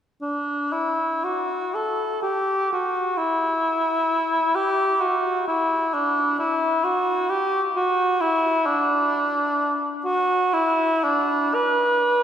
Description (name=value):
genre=classical, free, expressive piece for unaccompanied cor anglais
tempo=38-48 BPM (dotted quarters)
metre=6/8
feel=rubato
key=unclear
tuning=A4 = 435 Hz
part: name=mellow cor anglais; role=solo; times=0.2-12.2 s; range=D4 to B4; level=-20 LUFS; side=equal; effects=none
room=wet church reverb, RT60 3.6 s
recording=heard from further back in the room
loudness=-20 LUFS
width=side -9 dB against mid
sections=0.2-12.2 A section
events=none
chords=none